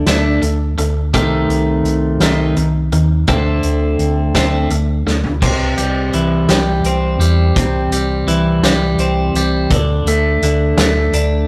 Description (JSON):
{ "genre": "indie rock", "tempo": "56 BPM (dotted quarters)", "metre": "6/8", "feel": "straight", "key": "unclear", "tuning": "A4 = 441 Hz", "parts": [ { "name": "twelve-string electric guitar", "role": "riff", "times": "0.0-11.5 s", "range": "C3 to D4", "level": "-18 LUFS", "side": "equal", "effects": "spring reverb" }, { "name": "hollow-body short-scale fingered electric bass", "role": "bass", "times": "0.0-11.4 s", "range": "C2 to E2", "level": "-20 LUFS", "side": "equal", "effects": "none" }, { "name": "loose indie drum kit", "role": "drums", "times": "0.1-11.3 s", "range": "crash cymbal, hi-hat, kick drum, snare drum, toms", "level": "-21 LUFS", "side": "equal", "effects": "none" } ], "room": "light reverb", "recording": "rough rehearsal-room recording, tube saturation", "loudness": "-15 LUFS", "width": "mono", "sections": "0.0-5.4 A section; 5.4-11.5 B section", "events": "drum fill 5.1-5.4", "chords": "0.0 D5; 1.1 Cm6; 3.3 D5; 5.4 C; 9.7 D5", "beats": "0.06 | 1.13 2.21 | 3.28 4.35 | 5.42 6.50 | 7.57 8.63 | 9.70 10.77" }